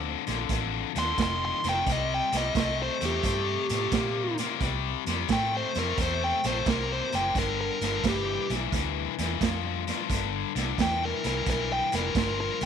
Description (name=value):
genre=electric blues shuffle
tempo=88 BPM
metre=4/4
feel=swing 67% on 8ths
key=C mixolydian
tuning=A4 = 440 Hz
part: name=overdriven electric guitar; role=riff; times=0.0-12.7 s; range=F2 to Bb3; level=-30 LUFS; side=left 15 dB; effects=none
part: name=vintage muted fingered electric bass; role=bass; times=0.0-12.7 s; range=F1 to Bb2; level=-33 LUFS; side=equal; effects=none
part: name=raw garage drum kit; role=drums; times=0.3-12.7 s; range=hi-hat, kick drum, snare drum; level=-30 LUFS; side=right 5 dB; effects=none
part: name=biting lead guitar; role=melody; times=1.0-12.7 s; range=G4 to C6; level=-29 LUFS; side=right 1 dB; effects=overdrive
room=moderate spring reverb, RT60 1.7 s, small room ambience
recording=1960s-style stereo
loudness=-25 LUFS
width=side -7 dB against mid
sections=0.0-12.7 A section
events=lead electric guitar solo 0.0-12.7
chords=0.0 F7; 1.9 C7(no3); 7.4 G7(no3)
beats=0.50 1.19 | 1.87 2.56 3.24 3.93 | 4.61 5.30 5.98 6.67 | 7.36 8.04 8.73 9.41 | 10.10 10.78 11.47 12.15